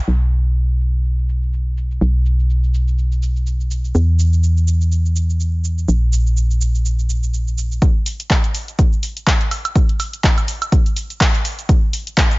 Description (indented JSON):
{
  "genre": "deep house",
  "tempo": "124 BPM",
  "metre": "4/4",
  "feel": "swing 57% on 16ths",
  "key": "unclear",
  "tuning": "A4 = 440 Hz",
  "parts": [
    { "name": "organ-like FM bass", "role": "bass", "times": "0.1-7.8 s", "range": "A#1 to E2", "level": "-15 LUFS", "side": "equal", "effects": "tube saturation, sidechain pumping" },
    { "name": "punchy analog drum machine", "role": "drums", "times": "0.1-12.4 s", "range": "handclaps, hi-hat, shaker, woodblock", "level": "-22 LUFS", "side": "right 1 dB", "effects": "low-pass filter on hats, low-pass filter on perc, low-pass filter on snare, low-pass filter on room" },
    { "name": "electronic kick drum", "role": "drums", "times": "7.8-12.3 s", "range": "none", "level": "-14 LUFS", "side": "equal", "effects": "none" }
  ],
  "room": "little or no reverb",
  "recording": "nothing above 7.5 kHz",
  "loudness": "-15 LUFS",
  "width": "side -23 dB against mid",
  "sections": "0.1-7.8 A section; 7.8-12.4 B section",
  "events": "filter sweep on drum 0.1-7.8; build-up 7.8-12.4",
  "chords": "none",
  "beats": "| 0.08 0.56 1.05 1.53 | 2.01 2.50 2.98 3.46 | 3.95 4.43 4.92 5.40 | 5.88 6.37 6.85 7.34 | 7.82 8.30 8.79 9.27 | 9.76 10.24 10.72 11.21 | 11.69 12.18"
}